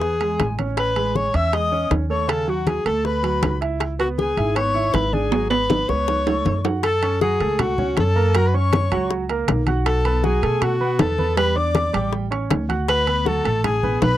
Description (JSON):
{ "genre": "Afro-Cuban jazz", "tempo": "159 BPM", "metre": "4/4", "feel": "straight", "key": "C# minor, F# minor from 6.8 s", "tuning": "A4 = 441 Hz", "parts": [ { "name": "breathy alto saxophone", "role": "melody", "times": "0.0-14.2 s", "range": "F#4 to E5", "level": "-22 LUFS", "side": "left 1 dB", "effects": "none" }, { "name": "breathy bright jazz flute", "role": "second line", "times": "0.0-14.2 s", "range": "F#5 to E6", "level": "-28 LUFS", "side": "left 7 dB", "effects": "none" }, { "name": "warm grand piano", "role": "accompaniment", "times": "0.0-14.1 s", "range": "C#3 to F#6", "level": "-26 LUFS", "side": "right 6 dB", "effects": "none" }, { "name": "upright bass", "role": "bass", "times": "0.0-14.2 s", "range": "G#1 to B2", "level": "-23 LUFS", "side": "equal", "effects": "none" }, { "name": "bongos", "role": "percussion", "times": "0.0-14.2 s", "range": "none", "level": "-26 LUFS", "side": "left 9 dB", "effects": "none" }, { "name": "congas", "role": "percussion", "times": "0.0-14.2 s", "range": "none", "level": "-27 LUFS", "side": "left 2 dB", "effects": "none" }, { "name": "timbales", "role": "percussion", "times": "0.2-14.2 s", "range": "none", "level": "-26 LUFS", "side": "right 6 dB", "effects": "none" } ], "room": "light reverb", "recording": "dry, close 1970s-style studio recording", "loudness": "-18 LUFS", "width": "side -13 dB against mid", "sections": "0.0-6.8 A section; 6.8-14.2 B section", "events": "drum fill 5.3-6.8", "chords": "0.0 E6; 0.8 Amaj7; 2.3 D#m7b5; 3.0 D69; 3.8 C#m7; 5.3 G#madd11; 6.1 F#madd11/C#; 6.8 F#madd9; 8.3 F#; 9.9 B5; 11.4 Em7; 12.1 A7; 12.9 D6", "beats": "0.02 0.40 | 0.78 1.16 1.53 1.91 | 2.29 2.67 3.05 3.43 | 3.81 4.18 4.56 4.94 | 5.32 5.70 6.08 6.46 | 6.83 7.21 7.59 7.97 | 8.35 8.72 9.10 9.48 | 9.86 10.24 10.62 10.99 | 11.37 11.75 12.13 12.51 | 12.88 13.26 13.64 14.02" }